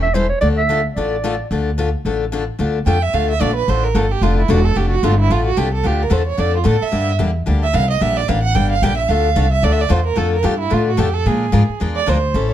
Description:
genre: acoustic string swing (jazz manouche).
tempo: 221 BPM.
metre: 4/4.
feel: swing 58% on 8ths.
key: D minor.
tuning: A4 = 440 Hz.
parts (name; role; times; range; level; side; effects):
warm clarinet; melody; 0.0-1.5 s; C5 to E5; -19 LUFS; right 3 dB; plate reverb.
picked steel-string acoustic guitar; accompaniment; 0.0-12.5 s; D3 to Bb4; -21 LUFS; left 6 dB; none.
upright bass; bass; 0.0-12.5 s; E1 to Bb2; -17 LUFS; equal; none.
warm violin; second line; 2.9-12.5 s; E4 to G5; -20 LUFS; right 6 dB; none.
room: light reverb.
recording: dark, warm production.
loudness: -14 LUFS.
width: side -11 dB against mid.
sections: 0.0-2.6 A section; 2.6-12.5 B section.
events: violin solo 2.6-12.5.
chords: 0.4 Dm; 6.9 Gm; 9.1 Dm; 11.3 Bb7.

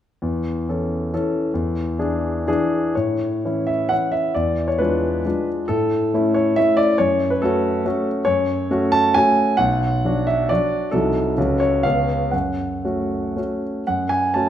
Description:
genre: classical, romantic triple-time dance for piano with dotted rhythms.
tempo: 109-148 BPM.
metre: 3/4.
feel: rubato.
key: A major, F# minor from 8.3 s.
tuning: A4 = 440 Hz.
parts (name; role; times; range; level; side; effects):
warm concert grand piano; solo; 0.2-14.5 s; B1 to A5; -18 LUFS; equal; none.
room: wet recital hall reverb, RT60 1.4 s.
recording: minimal, uncompressed stereo recording.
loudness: -18 LUFS.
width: side -10 dB against mid.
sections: 0.2-3.0 A section; 3.0-13.9 B section.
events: none.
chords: 0.2 A/E; 1.5 E7; 3.0 A; 4.4 E7b9; 5.7 A; 7.0 F#m; 9.6 Bm; 10.9 Cdim7; 11.4 F#m/C#; 11.8 C#7; 12.3 F#m.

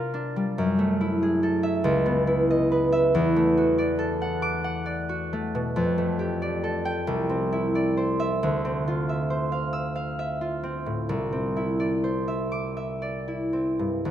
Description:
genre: classical, solo harp piece.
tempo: 38-48 BPM (dotted quarters).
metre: 6/8.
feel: rubato.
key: unclear.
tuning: A4 = 439 Hz.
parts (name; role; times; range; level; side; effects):
concert harp; solo; 0.0-14.1 s; C2 to E6; -23 LUFS; equal; none.
room: moderate concert hall reverb, RT60 2.5 s.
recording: none.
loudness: -23 LUFS.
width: side -10 dB against mid.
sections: 0.0-14.1 A section.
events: none.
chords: 0.0 C9sus4; 0.6 F#m9; 1.9 C#m9; 3.1 E9sus4; 5.8 F69; 7.0 Cadd9; 8.4 Dm9; 11.1 Cadd9.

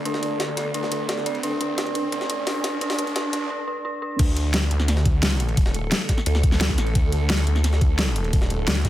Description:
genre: dark technical drum and bass.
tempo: 174 BPM.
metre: 4/4.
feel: straight.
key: unclear.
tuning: A4 = 440 Hz.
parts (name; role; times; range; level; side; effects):
swarming drone; sustained chords; 0.0-8.9 s; D3 to D5; -33 LUFS; right 1 dB; built-in reverb, sidechain pumping.
snarling distorted saw bass; bass; 0.0-8.9 s; Eb1 to D2; -24 LUFS; equal; distortion, tube saturation, sidechain pumping, high-pass filter.
riser; sound effects; 0.0-3.5 s; none; -33 LUFS; right 2 dB; none.
deep dark ambient pad; texture; 0.0-3.5 s; D4 to D5; -33 LUFS; right 3 dB; chorus, built-in reverb, sidechain pumping.
dark detuned synth bell; arpeggios; 0.1-4.2 s; D4 to D5; -28 LUFS; equal; chorus, sidechain pumping, low-pass filter, dub echo.
dubstep drum kit; drums; 0.1-8.9 s; crash cymbal, hi-hat, snare drum; -25 LUFS; left 1 dB; overdrive, high-pass filter on hats, small room ambience, high-pass filter on cymbals, high-pass filter on snare.
jungle sampler-style drum kit; drums; 0.1-8.9 s; hi-hat, ride cymbal, snare drum; -32 LUFS; equal; high-pass filter on cymbals, small room ambience, high-pass filter on snare, high-pass filter on hats.
electronic kick drum; drums; 4.2-8.9 s; none; -20 LUFS; equal; overdrive, small room ambience.
room: light reverb.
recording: high-pass filter.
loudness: -20 LUFS.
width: side -14 dB against mid.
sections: 0.0-4.2 A section; 4.2-8.9 B section.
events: build-up 0.0-4.2; riser 0.0-3.5; filter sweep on synth bell 0.0-4.2; break 3.5-4.2; drop 4.2-8.9.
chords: 0.0 D5.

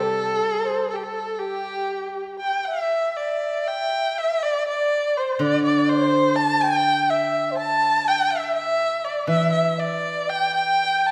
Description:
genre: chinese traditional, Chinese chamber ensemble.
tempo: 61 BPM.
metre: 2/4.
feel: rubato.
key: G zhi mode.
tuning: A4 = 440 Hz.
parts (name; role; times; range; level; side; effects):
warm erhu; melody; 0.0-11.1 s; G4 to A5; -25 LUFS; equal; none.
breathy flugelhorn; second line; 0.0-11.1 s; G4 to A5; -27 LUFS; equal; none.
steel-string zither; accompaniment; 0.0-2.4, 5.4-11.1 s; C3 to G3; -28 LUFS; equal; none.
room: wet recital hall reverb, RT60 1.6 s.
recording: none.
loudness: -22 LUFS.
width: mono.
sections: 0.0-3.4 A section; 3.4-11.1 B section.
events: none.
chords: none.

